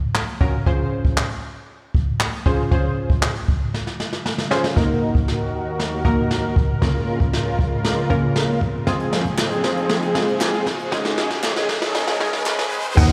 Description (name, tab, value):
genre	dance-pop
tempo	117 BPM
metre	4/4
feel	straight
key	Eb dorian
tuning	A4 = 442 Hz
part	jazz brush drum kit	drums	0.1-13.1 s	crash cymbal, handclaps, hi-hat, kick drum, snare drum	-23 LUFS	equal	none
part	punchy chord stab	accompaniment	0.4-13.1 s	Db3 to Eb5	-26 LUFS	equal	chorus, sidechain pumping, slapback echo
part	lush unison pad	sustained chords	4.8-13.1 s	Db2 to Bb4	-27 LUFS	equal	chorus, sidechain pumping
part	riser and downlifter	sound effects	7.6-13.1 s	none	-33 LUFS	equal	slapback echo
part	group handclap	percussion	9.4-12.6 s	none	-33 LUFS	equal	none
part	hollow square pluck	melody	13.0-13.1 s	Gb5	-25 LUFS	equal	chorus, sidechain pumping
part	plucky analog bass	bass	13.0-13.1 s	Eb2	-16 LUFS	equal	sidechain pumping
room	moderate lush hall reverb, RT60 2.2 s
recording	live gig heard through the venue's PA, club reverb, high-pass filter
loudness	-21 LUFS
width	mono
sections	0.0-4.8 A section; 4.8-13.0 B section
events	drum fill 3.7-4.8, 4.8-13.0; build-up 4.8-13.0; filter sweep 4.8-13.0; riser 7.6-13.0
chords	0.0 Gbmaj7; 0.7 Dbmaj7; 4.8 Ebm; 6.8 Bbm/Db; 8.9 Fm; 10.9 Absus4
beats	0.15 | 0.67 1.18 1.69 2.20 | 2.72 3.23 3.74 4.25 | 4.77 5.28 5.79 6.31 | 6.82 7.33 7.84 8.36 | 8.87 9.38 9.90 10.41 | 10.92 11.43 11.95 12.46 | 12.97